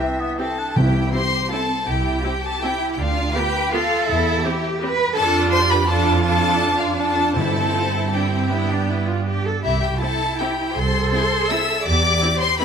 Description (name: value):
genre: classical, orchestral ballroom waltz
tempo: 162 BPM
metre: 3/4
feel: uneven beats, rubato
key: C major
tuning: A4 = 438 Hz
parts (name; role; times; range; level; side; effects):
- warm chamber violin section; melody; 0.0-12.6 s; E5 to E6; -23 LUFS; left 3 dB; none
- clear clarinet; second line; 0.0-0.8 s; B3 to D4; -28 LUFS; left 1 dB; none
- flute section; second line; 0.0-0.5 s; E5; -35 LUFS; left 5 dB; none
- rich chamber violin section; second line; 0.0-12.6 s; E4 to E5; -26 LUFS; left 1 dB; none
- rich chamber viola section; accompaniment; 0.0-12.6 s; B3 to G4; -26 LUFS; right 2 dB; none
- warm bassoon; accompaniment; 0.0-0.5 s; E3; -34 LUFS; equal; none
- mellow French horn section; sustained chords; 0.0-0.6 s; E4; -30 LUFS; right 1 dB; none
- warm chamber cello section; bass; 0.8-12.6 s; C4 to B4; -25 LUFS; right 3 dB; none
- warm studio double bass section; bass; 0.8-12.2 s; C2 to G2; -24 LUFS; right 2 dB; none
- timpani; percussion; 0.8-1.3, 7.4-7.9 s; G2 to C3; -23 LUFS; left 1 dB; none
room: moderate scoring stage reverb, RT60 2.0 s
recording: none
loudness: -17 LUFS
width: side -7 dB against mid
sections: 0.8-12.6 A section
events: none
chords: 0.0 C; 3.0 Bdim/D; 4.1 C/E; 5.2 Dm/F; 7.4 C/G; 8.5 G; 9.6 C; 11.9 C/E